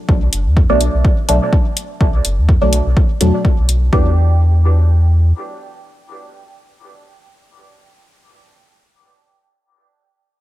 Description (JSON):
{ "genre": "dub techno", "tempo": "125 BPM", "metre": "4/4", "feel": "swing 54% on 16ths", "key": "E minor", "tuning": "A4 = 439 Hz", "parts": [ { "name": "soft dub sub bass", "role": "bass", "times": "0.1-5.3 s", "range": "F#1 to E2", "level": "-13 LUFS", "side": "equal", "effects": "tube saturation, sidechain pumping" }, { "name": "electronic kick drum", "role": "drums", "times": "0.1-4.0 s", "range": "none", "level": "-13 LUFS", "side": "equal", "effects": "none" }, { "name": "electronic hi-hat", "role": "drums", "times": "0.3-3.8 s", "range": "none", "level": "-19 LUFS", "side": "left 2 dB", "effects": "none" }, { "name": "filtered dub chord stab", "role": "stabs", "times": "0.7-8.9 s", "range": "B2 to G4", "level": "-19 LUFS", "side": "equal", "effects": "phaser, sidechain pumping, dub echo" } ], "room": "light reverb, digital ambience", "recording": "none", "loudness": "-12 LUFS", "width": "side -15 dB against mid", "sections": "0.0-3.9 A section; 3.9-7.8 B section", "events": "none", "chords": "0.0 B5; 3.9 Em7" }